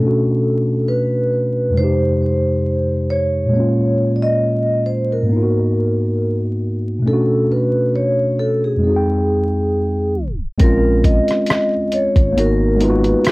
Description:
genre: lo-fi hip hop.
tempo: 68 BPM.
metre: 4/4.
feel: swing 55% on 16ths.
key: unclear.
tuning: A4 = 440 Hz.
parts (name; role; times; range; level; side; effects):
vibraphone with medium mallets; melody; 0.0-13.3 s; Ab4 to Eb5; -19 LUFS; equal; cassette tape.
mellow tine electric piano; accompaniment; 0.0-13.3 s; F2 to G5; -17 LUFS; equal; medium stereo tremolo.
sub bass with octave; bass; 10.6-13.1 s; Ab1 to Bb1; -18 LUFS; equal; none.
lo-fi sampler-style drum kit; drums; 10.6-13.3 s; hi-hat, kick drum, rim click; -15 LUFS; equal; cassette tape.
room: light reverb.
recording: home recording on cassette, vinyl crackle, tape stop.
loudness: -14 LUFS.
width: side -22 dB against mid.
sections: 0.0-10.6 A section; 10.6-13.3 B section.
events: tape stop 10.2-10.6.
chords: 0.0 Bm9; 1.8 Fm9; 3.5 Bbm7; 5.3 Abm9; 7.1 Bm9; 8.8 Fm9; 10.6 Bbm9; 12.4 Abm9.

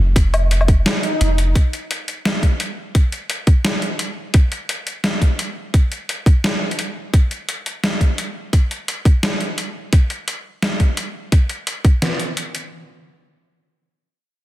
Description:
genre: half-time drum and bass.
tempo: 172 BPM.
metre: 4/4.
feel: swing 56% on 16ths, half-time.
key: unclear.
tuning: A4 = 445 Hz.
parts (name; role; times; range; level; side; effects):
long sustained 808-style bass; bass; 0.0-1.5 s; F1; -16 LUFS; equal; none.
boom bap sampler-style drum kit; drums; 0.2-12.6 s; hi-hat, snare drum, woodblock; -22 LUFS; equal; none.
electronic kick drum; drums; 0.2-11.9 s; none; -13 LUFS; equal; none.
swell; sound effects; 1.0-1.6 s; none; -25 LUFS; equal; none.
room: light reverb.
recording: dense, heavily limited modern master.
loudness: -16 LUFS.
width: side -15 dB against mid.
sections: 0.0-12.7 A section; 12.7-14.4 B section.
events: swell 1.0-1.6.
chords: none.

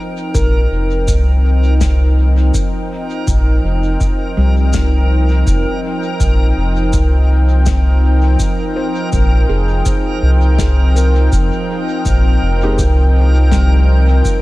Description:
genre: ambient dub.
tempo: 82 BPM.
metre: 4/4.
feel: swing 58% on 16ths.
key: unclear.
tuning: A4 = 443 Hz.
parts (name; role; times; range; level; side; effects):
warm analog pad; sustained chords; 0.0-14.4 s; F3 to G5; -20 LUFS; equal; chorus.
backwards swelling texture; texture; 0.0-14.4 s; Bb4; -25 LUFS; right 2 dB; built-in reverb.
handpan; arpeggios; 0.3-14.4 s; G3 to C5; -26 LUFS; left 1 dB; dub echo.
round analog bass; bass; 0.3-14.2 s; F1 to C2; -11 LUFS; equal; none.
electronic kick drum; drums; 0.3-14.4 s; none; -19 LUFS; equal; studio reverb.
shaker and snare drum; drums; 0.3-14.4 s; none; -26 LUFS; left 4 dB; studio reverb, dub echo.
warm upright piano; stabs; 12.6-12.8 s; Ab3 to G4; -24 LUFS; left 1 dB; dub echo.
room: small room ambience.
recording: none.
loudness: -11 LUFS.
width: side -18 dB against mid.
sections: 0.0-14.4 A section.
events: none.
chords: 0.0 Fm7.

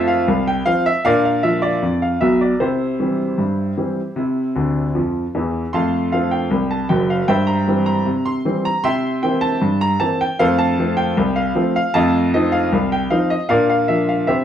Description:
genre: ragtime piano.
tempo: 77 BPM.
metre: 2/4.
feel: straight.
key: F major.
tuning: A4 = 439 Hz.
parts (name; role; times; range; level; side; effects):
clear grand piano; solo; 0.0-14.4 s; Gb1 to C6; -16 LUFS; equal; none.
room: wet studio reverb, RT60 0.7 s.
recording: heard from further back in the room.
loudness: -16 LUFS.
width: side -9 dB against mid.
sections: 0.0-14.4 A section.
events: grand piano fill 4.6-5.7.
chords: 0.0 F; 1.0 Bb; 2.6 C; 5.7 F; 7.3 C/G; 8.8 C7; 10.4 F; 12.0 F7; 13.5 Bb.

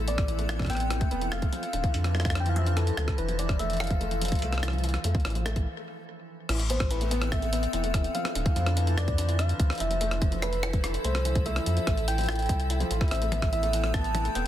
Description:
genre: IDM.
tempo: 145 BPM.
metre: 4/4.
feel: straight.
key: F lydian.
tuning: A4 = 438 Hz.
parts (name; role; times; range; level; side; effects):
icy glass pad; sustained chords; 0.0-14.5 s; E3 to A4; -36 LUFS; right 1 dB; chorus, built-in reverb.
felt-muted upright piano; arpeggios; 0.0-14.5 s; D3 to F4; -37 LUFS; left 1 dB; ping-pong delay.
warm sub bass; bass; 0.0-14.5 s; D1 to F2; -28 LUFS; equal; tube saturation.
soft struck synth lead; melody; 0.1-14.5 s; A4 to A5; -33 LUFS; left 1 dB; chorus, ping-pong delay.
jungle sampler-style drum kit; drums; 0.1-14.4 s; crash cymbal, hi-hat, rim click, toms; -34 LUFS; equal; soft clipping on snare.
electronic kick drum; drums; 0.2-14.0 s; none; -27 LUFS; equal; none.
room: light reverb.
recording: dense, heavily limited modern master.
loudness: -25 LUFS.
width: side -12 dB against mid.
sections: 0.0-6.5 A section; 6.5-14.5 B section.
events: break 5.7-6.5.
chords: 0.0 Amadd9; 1.5 Dmadd9; 3.2 Fmaj7; 6.5 Amadd9; 8.1 Dmadd9; 9.8 Fmaj7; 13.1 Amadd9.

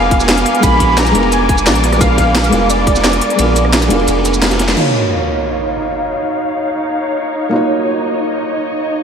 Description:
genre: liquid drum and bass.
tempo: 174 BPM.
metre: 4/4.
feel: straight.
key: Eb minor.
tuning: A4 = 440 Hz.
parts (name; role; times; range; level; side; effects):
warm velvety synth lead; melody; 0.0-4.4 s; D5 to Cb6; -18 LUFS; right 1 dB; chorus, ping-pong delay.
felt-muted upright piano; accompaniment; 0.0-9.0 s; Ab3 to Db5; -17 LUFS; right 1 dB; tape echo.
muted studio string section; sustained chords; 0.0-9.0 s; Cb4 to D6; -18 LUFS; left 1 dB; vintage 12-bit sampler grit, sidechain pumping, low-pass filter.
warm sub bass; bass; 0.0-4.8 s; F1 to Bb1; -17 LUFS; equal; none.
crunchy breakbeat drum kit; drums; 0.1-4.8 s; ride cymbal, snare drum; -22 LUFS; right 1 dB; high-pass filter on cymbals, high-pass filter on snare, high-pass filter on room.
drum and bass drum kit; drums; 0.1-4.8 s; crash cymbal, hi-hat, rim click, shaker, snare drum; -18 LUFS; equal; none.
electronic kick drum; drums; 0.1-2.9 s; none; -15 LUFS; equal; none.
sub drop; sound effects; 4.8-6.1 s; none; -22 LUFS; right 1 dB; none.
room: wet church reverb, RT60 3.4 s.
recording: dreamy mix soaked in reverb.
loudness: -11 LUFS.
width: side -7 dB against mid.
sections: 0.0-4.8 A section; 4.8-9.0 B section.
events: drop 0.0-4.8; kick drops out 3.4-4.8; drum fill 4.4-4.8; band accent 4.7; impact 4.8-6.1; filter sweep on string section 4.8-9.0.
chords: 0.0 Bb7b9; 4.8 Ebm9.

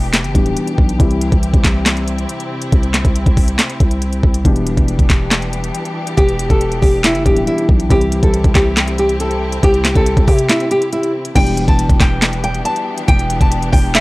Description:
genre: hip hop, trap.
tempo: 139 BPM.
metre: 4/4.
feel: half-time.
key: E minor.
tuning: A4 = 441 Hz.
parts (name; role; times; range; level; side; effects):
felt-muted upright piano; accompaniment; 0.0-14.0 s; B2 to G4; -23 LUFS; left 2 dB; none.
clear symphonic string section; sustained chords; 0.0-14.0 s; C3 to G4; -26 LUFS; left 1 dB; none.
growling 808-style bass; bass; 0.0-14.0 s; D1 to C3; -19 LUFS; equal; none.
trap drum kit; drums; 0.1-14.0 s; crash cymbal, handclaps, hi-hat, kick drum, snare drum; -13 LUFS; equal; none.
nylon-string guitar; melody; 6.2-14.0 s; E4 to A5; -17 LUFS; equal; tape echo.
room: studio reverb.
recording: dry, gritty hardware recording, transformer saturation, cassette tape.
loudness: -12 LUFS.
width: side -21 dB against mid.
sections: 0.0-11.4 A section; 11.4-14.0 B section.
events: break 0.0-6.2, 10.5-11.4.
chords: 0.0 Em7; 1.0 C; 4.5 Em7; 7.9 C; 11.4 Em7.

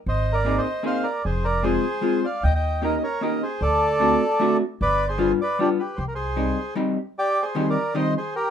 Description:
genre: musette waltz.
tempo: 152 BPM.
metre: 3/4.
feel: straight.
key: C minor.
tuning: A4 = 440 Hz.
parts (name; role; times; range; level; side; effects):
bandoneon; melody; 0.1-8.5 s; D4 to G5; -23 LUFS; right 1 dB; none.
upright bass; bass; 0.1-6.5 s; F1 to Eb2; -25 LUFS; equal; none.
vintage hollow-body jazz guitar; accompaniment; 0.4-8.2 s; Eb3 to Ab4; -23 LUFS; left 1 dB; none.
room: moderate studio reverb, RT60 0.6 s.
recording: minimal, uncompressed stereo recording.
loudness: -20 LUFS.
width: side -8 dB against mid.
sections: 0.0-7.2 A section; 7.2-8.5 A section.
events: none.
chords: 0.1 Abadd9; 1.2 Fm; 2.4 Eb7; 3.6 D7; 4.8 G7; 6.0 Cm.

